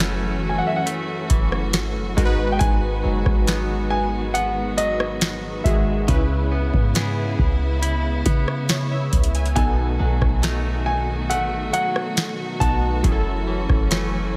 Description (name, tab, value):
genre	contemporary R&B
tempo	69 BPM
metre	4/4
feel	straight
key	C# minor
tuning	A4 = 436 Hz
part	warm baby grand piano	melody	0.0-14.3 s	D#5 to A5	-29 LUFS	equal	digital delay
part	warm analog keys	accompaniment	0.0-14.4 s	B2 to G#5	-30 LUFS	equal	chorus
part	clear studio string section	sustained chords	0.0-14.4 s	C#3 to F#4	-32 LUFS	equal	none
part	direct-recorded clean electric guitar	arpeggios	0.0-14.4 s	F#2 to G#4	-33 LUFS	equal	digital delay
part	clean 808-style bass	bass	0.0-14.4 s	F#1 to C#3	-26 LUFS	equal	none
part	booming analog drum machine	drums	0.0-14.1 s	hi-hat, kick drum, rim click, snare drum	-24 LUFS	equal	none
room	digital ambience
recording	none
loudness	-21 LUFS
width	mono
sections	0.0-14.4 A section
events	none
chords	0.0 F#m7; 2.2 G#m7; 6.1 C#m7; 9.6 B7; 13.0 F#m7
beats	0.00 0.87 1.74 | 2.61 3.48 4.34 5.21 | 6.08 6.95 7.82 8.69 | 9.56 10.43 11.30 12.17 | 13.04 13.91